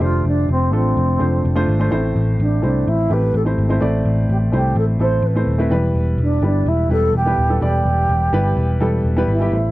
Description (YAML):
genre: piano-driven pop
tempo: 126 BPM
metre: 4/4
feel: straight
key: unclear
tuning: A4 = 439 Hz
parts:
  - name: reedy wooden-headed alto flute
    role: melody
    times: 0.0-9.7 s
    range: C4 to C5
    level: -21 LUFS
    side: right 1 dB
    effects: none
  - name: dark grand piano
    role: accompaniment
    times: 0.0-9.7 s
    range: A2 to D5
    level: -21 LUFS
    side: equal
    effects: none
  - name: picked electric bass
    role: bass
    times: 0.0-9.7 s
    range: D#1 to C2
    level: -18 LUFS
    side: equal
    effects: none
room: little or no reverb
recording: dry, close 1970s-style studio recording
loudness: -15 LUFS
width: side -17 dB against mid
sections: 0.0-9.5 A section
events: none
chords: 0.0 F6; 1.9 Am; 5.7 Em